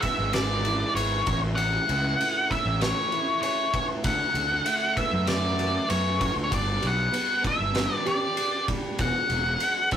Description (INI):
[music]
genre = quiet-loud alternative rock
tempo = 97 BPM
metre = 4/4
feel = straight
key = unclear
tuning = A4 = 440 Hz
[part]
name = octave-fuzz lead guitar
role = melody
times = 0.0-10.0 s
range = C#5 to F#5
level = -26 LUFS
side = left 1 dB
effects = distortion
[part]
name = fingerpicked steel-string acoustic guitar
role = arpeggios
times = 0.0-10.0 s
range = E2 to G4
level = -34 LUFS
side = right 3 dB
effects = none
[part]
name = oversized low-tuned drum kit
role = drums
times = 0.0-10.0 s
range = kick drum, ride cymbal, snare drum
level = -30 LUFS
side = equal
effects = none
[part]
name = fuzz fingered electric bass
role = bass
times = 0.2-9.6 s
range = E1 to F#2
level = -28 LUFS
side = equal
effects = overdrive
[sound]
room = light reverb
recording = rough rehearsal-room recording, warm saturation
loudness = -23 LUFS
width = side -9 dB against mid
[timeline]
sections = 0.0-10.0 A section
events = none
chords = 0.0 Eadd9; 1.3 A; 4.0 D6; 6.5 G; 9.0 Eadd9